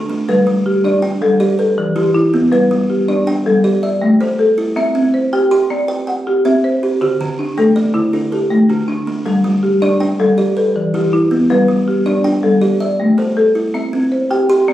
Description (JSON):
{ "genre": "southern african traditional, mbira-style interlocking cycle", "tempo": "107 BPM (dotted quarters)", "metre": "12/8", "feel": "straight", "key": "G major", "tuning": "A4 = 440 Hz", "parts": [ { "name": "buzzing kalimba", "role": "arpeggios", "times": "0.0-14.7 s", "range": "D3 to C6", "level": "-17 LUFS", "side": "right 2 dB", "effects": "none" }, { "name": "folk marimba with medium mallets", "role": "arpeggios", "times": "0.0-14.7 s", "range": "D3 to G5", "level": "-14 LUFS", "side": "left 1 dB", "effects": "none" } ], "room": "moderate recital hall reverb, RT60 1.4 s", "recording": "recorded on a phone in the room, club reverb, compression", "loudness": "-12 LUFS", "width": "side -13 dB against mid", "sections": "0.3-14.7 A section", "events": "none", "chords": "0.3 G; 1.4 Em; 2.5 G; 3.6 Am; 4.8 C; 7.0 D; 9.3 G5; 10.4 Em; 11.5 G; 12.6 Am; 13.8 C" }